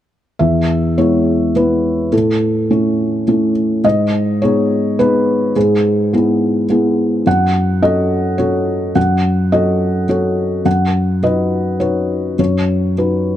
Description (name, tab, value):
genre	classical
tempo	105 BPM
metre	3/4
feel	rubato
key	E major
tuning	A4 = 439 Hz
part	felt-muted upright piano	accompaniment	0.4-13.4 s	E2 to F#5	-13 LUFS	equal	none
room	light reverb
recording	dark, warm production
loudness	-13 LUFS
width	side -11 dB against mid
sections	0.4-13.4 A section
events	none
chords	0.4 E; 2.1 A; 3.8 G#m; 5.6 E/G#; 7.3 F#m; 10.7 B/F#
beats	| 0.39 0.97 1.55 | 2.12 2.70 3.27 | 3.84 4.42 4.98 | 5.55 6.12 6.69 | 7.26 7.82 8.39 | 8.96 9.52 10.09 | 10.66 11.23 11.80 | 12.38 12.97